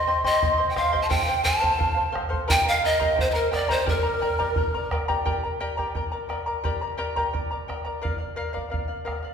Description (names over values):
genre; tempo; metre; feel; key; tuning
andean folk, Andean ensemble; 87 BPM; 2/4; straight; G minor; A4 = 441 Hz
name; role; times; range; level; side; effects
breathy polished pan flute; melody; 0.0-4.9 s; Bb4 to A5; -24 LUFS; right 1 dB; none
breathy quena; second line; 0.0-4.9 s; Bb4 to A5; -30 LUFS; right 1 dB; none
charango; accompaniment; 0.0-9.3 s; G4 to C6; -26 LUFS; left 2 dB; none
bombo; percussion; 0.2-9.2 s; none; -29 LUFS; right 1 dB; none
room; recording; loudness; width
wet recital hall reverb, RT60 1.8 s; recorded in a church or concert hall; -22 LUFS; side -7 dB against mid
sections
0.0-5.2 A section; 5.2-9.3 B section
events
none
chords
0.0 Cm; 1.1 F; 2.5 Eb; 3.9 Gm; 8.0 Bb